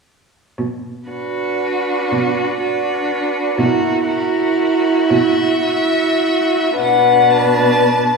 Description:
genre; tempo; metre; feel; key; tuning
classical, slow romantic movement for string quartet; 33-42 BPM (dotted quarters); 6/8; rubato; B minor; A4 = 437 Hz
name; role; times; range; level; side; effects
rich cello; bass; 0.6-8.2 s; B2; -21 LUFS; right 2 dB; none
clear violin; melody; 1.1-8.2 s; A#4 to A5; -19 LUFS; left 4 dB; none
rich violin; second line; 1.1-8.2 s; F#4 to B4; -19 LUFS; left 1 dB; none
rich viola; accompaniment; 1.1-8.2 s; D4 to E4; -19 LUFS; right 6 dB; none
room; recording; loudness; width
wet recital hall reverb, RT60 1.4 s; heard from further back in the room, small room ambience; -14 LUFS; side -4 dB against mid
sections
0.6-6.8 A section; 6.8-8.2 B section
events
none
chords
0.6 Bm; 3.6 F#7/B; 6.8 Bm

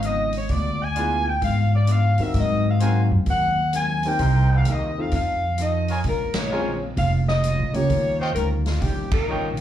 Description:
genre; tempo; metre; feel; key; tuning
jazz, big band swing; 130 BPM; 4/4; swing 66% on 8ths; unclear; A4 = 440 Hz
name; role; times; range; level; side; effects
warm saxophone section; melody; 0.0-9.6 s; F4 to Ab5; -25 LUFS; left 1 dB; slapback echo
vintage hollow-body jazz guitar; accompaniment; 0.0-9.6 s; Ab2 to A4; -33 LUFS; left 6 dB; slapback echo
upright bass; bass; 0.0-9.6 s; F1 to Ab2; -22 LUFS; equal; none
swinging big-band drum kit; drums; 0.0-9.6 s; hi-hat, kick drum, ride cymbal, snare drum; -30 LUFS; equal; none
warm concert grand piano; accompaniment; 1.0-8.3 s; Bb3 to Bb4; -29 LUFS; left 1 dB; slapback echo
clear trumpet section; stabs; 1.0-9.5 s; Eb4 to Ab5; -30 LUFS; right 2 dB; slapback echo
room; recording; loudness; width
light reverb; live gig heard through the venue's PA, club reverb; -19 LUFS; side -11 dB against mid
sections
0.0-9.6 A section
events
band accent 6.3, 9.0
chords
0.5 Ddim7; 2.3 Ab9; 4.2 Cm7; 5.1 F7; 6.0 Bbm7; 7.9 Eb9

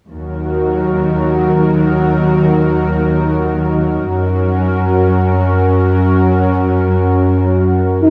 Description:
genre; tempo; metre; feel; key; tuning
cinematic; free time; none; none; Eb minor; A4 = 440 Hz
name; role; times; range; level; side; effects
lush unison pad; sustained chords; 0.1-8.1 s; Gb3 to Bb4; -16 LUFS; equal; chorus
warm symphonic cello section; bass; 0.1-8.1 s; Eb2 to Gb2; -17 LUFS; equal; none
dark French horn section; sustained chords; 8.0-8.1 s; Eb4; -10 LUFS; equal; none
room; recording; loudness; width
moderate scoring stage reverb, RT60 1.9 s; studio reverb; -14 LUFS; mono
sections
0.1-8.0 A section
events
none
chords
0.1 Ebm; 4.1 Gb

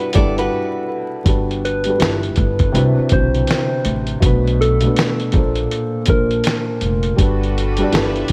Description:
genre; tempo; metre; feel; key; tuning
lo-fi hip hop; 81 BPM; 4/4; swing 65% on 16ths; G major; A4 = 439 Hz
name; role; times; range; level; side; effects
nylon-string guitar; second line; 0.0-1.2 s; F#4 to D5; -25 LUFS; equal; analog delay
felt-muted upright piano; accompaniment; 0.0-8.3 s; Bb2 to D5; -23 LUFS; equal; none
dusty soul sampler-style drum kit; drums; 0.1-8.3 s; finger snaps, hi-hat, kick drum, snare drum; -20 LUFS; equal; none
upright bass; bass; 0.2-8.3 s; F1 to C2; -23 LUFS; equal; none
soft struck synth lead; melody; 1.6-7.2 s; A4 to C5; -25 LUFS; equal; chorus
warm studio string section; sustained chords; 7.2-8.3 s; F3 to E5; -29 LUFS; equal; none
room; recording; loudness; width
light reverb; vinyl crackle; -17 LUFS; mono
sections
0.0-1.3 A section; 1.3-8.3 A section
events
break 0.5-1.3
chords
0.0 G69; 1.3 Gmaj9; 2.0 G13; 2.7 Cmaj9#11; 4.2 Bm7; 5.3 Bbmaj7; 7.2 Gmaj9

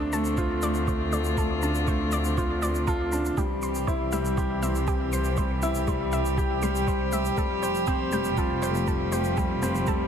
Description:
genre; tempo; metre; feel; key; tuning
piano and strings electronica; 120 BPM; 4/4; straight; unclear; A4 = 442 Hz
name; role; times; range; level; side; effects
warm string quartet; sustained chords; 0.0-10.1 s; D3 to C5; -32 LUFS; right 1 dB; sidechain pumping
dark baby grand piano; riff; 0.0-10.1 s; G3 to C5; -27 LUFS; left 1 dB; tape echo
rich studio double bass section; bass; 0.0-10.1 s; F1 to D2; -30 LUFS; equal; sidechain pumping
analog pluck; arpeggios; 0.1-10.0 s; G4 to C6; -36 LUFS; right 2 dB; chorus, sidechain pumping, tape echo
shaker; drums; 0.1-10.0 s; none; -40 LUFS; left 2 dB; none
electronic kick drum; drums; 0.4-10.0 s; none; -29 LUFS; right 1 dB; none
room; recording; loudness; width
light reverb, studio reverb; none; -24 LUFS; side -8 dB against mid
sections
0.0-10.1 A section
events
none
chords
0.0 Dm7; 3.4 C; 7.4 Fadd9

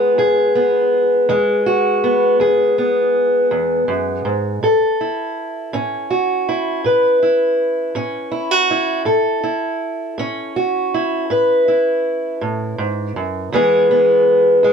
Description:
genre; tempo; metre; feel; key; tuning
blues; 54 BPM (dotted quarters); 12/8; straight; unclear; A4 = 440 Hz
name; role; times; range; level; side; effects
fingerpicked steel-string acoustic guitar; solo; 0.0-14.7 s; E2 to B4; -14 LUFS; equal; none
room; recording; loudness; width
moderate studio ambience, RT60 0.5 s; dark, warm production; -14 LUFS; side -6 dB against mid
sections
0.0-14.7 A section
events
none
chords
0.0 E; 4.6 A; 13.5 E

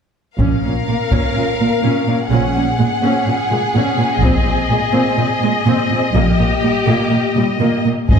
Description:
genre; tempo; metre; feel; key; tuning
cinematic, epic orchestral film score; 124 BPM; 4/4; straight; Bb minor; A4 = 441 Hz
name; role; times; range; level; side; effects
warm symphonic violin section; melody; 0.4-8.2 s; Eb5 to Gb5; -22 LUFS; left 3 dB; none
warm studio violin section; second line; 0.4-8.2 s; G4 to Bb4; -22 LUFS; left 2 dB; none
warm symphonic viola section; accompaniment; 0.4-8.2 s; G3 to Db4; -20 LUFS; equal; none
clear symphonic double bass section; bass; 0.4-8.2 s; Ab1 to Bb1; -19 LUFS; right 1 dB; none
warm symphonic cello section; bass; 0.4-8.2 s; Ab2 to Bb2; -18 LUFS; right 2 dB; none
taiko ensemble; drums; 0.4-5.1, 8.1-8.2 s; none; -18 LUFS; left 1 dB; none
dark French horn section; sustained chords; 8.1-8.2 s; Eb3 to C4; -22 LUFS; left 5 dB; none
room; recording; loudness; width
wet recital hall reverb, RT60 1.4 s; heard from further back in the room; -14 LUFS; side -7 dB against mid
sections
0.4-8.1 A section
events
none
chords
0.4 Bbm; 2.3 Gbsus2/Bb; 4.2 Ab/Bb; 6.1 Eb/Bb

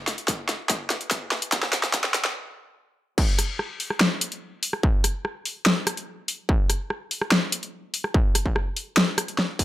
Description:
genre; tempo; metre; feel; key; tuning
dubstep; 145 BPM; 4/4; half-time; none; none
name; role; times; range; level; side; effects
dubstep drum kit; drums; 0.1-9.6 s; crash cymbal, hi-hat, rim click, snare drum; -23 LUFS; left 1 dB; high-pass filter on hats, high-pass filter on snare, high-pass filter on cymbals
electronic kick drum; drums; 0.3-9.6 s; none; -23 LUFS; equal; distortion
room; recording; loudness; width
light reverb, digital ambience; high-pass filter; -22 LUFS; side -14 dB against mid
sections
0.0-3.2 A section; 3.2-9.6 B section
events
build-up 0.0-3.2; drum fill 0.0-2.4; filter sweep 0.0-3.2; stop 2.4-3.2; drop 3.2-9.6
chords
none

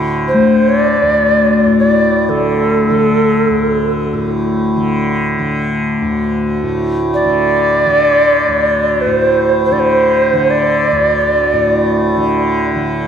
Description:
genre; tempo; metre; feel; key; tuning
world meditative, free-time meditation music; free time; none; none; unclear; A4 = 439 Hz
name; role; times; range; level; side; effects
tanpura; drone; 0.0-13.1 s; D2 to D3; -16 LUFS; right 1 dB; none
Native American-style cedar flute; melody; 0.3-12.2 s; A4 to D5; -13 LUFS; right 1 dB; slapback echo
bronze singing bowl; texture; 0.3-7.8 s; A3; -18 LUFS; left 4 dB; stereo widening
room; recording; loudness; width
wet plate reverb, RT60 2.6 s; dark, warm production; -11 LUFS; side -8 dB against mid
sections
0.0-13.1 A section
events
none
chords
none

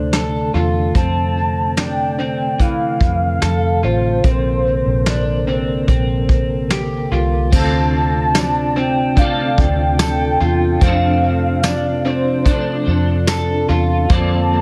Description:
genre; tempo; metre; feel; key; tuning
dream pop; 73 BPM; 4/4; straight; D minor; A4 = 441 Hz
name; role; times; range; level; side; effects
warm velvety synth lead; melody; 0.0-14.6 s; C5 to A5; -24 LUFS; equal; chorus, analog delay
mellow tonewheel organ; sustained chords; 0.0-14.6 s; C3 to Bb4; -25 LUFS; equal; fast rotary speaker
electric guitar through a small old amp; arpeggios; 0.0-14.6 s; E3 to A4; -24 LUFS; equal; subtle chorus, analog delay
vintage muted fingered electric bass; bass; 0.0-14.6 s; A1 to F2; -22 LUFS; equal; none
soft brush drum kit; drums; 0.1-14.3 s; crash cymbal, hi-hat, kick drum, snare drum, tambourine; -19 LUFS; equal; none
clean electric guitar; accompaniment; 7.5-14.6 s; D3 to D5; -27 LUFS; equal; tremolo, ensemble chorus, analog delay
room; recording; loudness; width
light reverb, studio reverb; echo-heavy mix; -17 LUFS; mono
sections
0.0-7.5 A section; 7.5-14.6 B section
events
none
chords
0.0 Dm7; 1.0 Fmaj7; 4.2 Bbsus2; 7.5 Dm7; 10.8 F6; 14.1 Bbmaj7/F

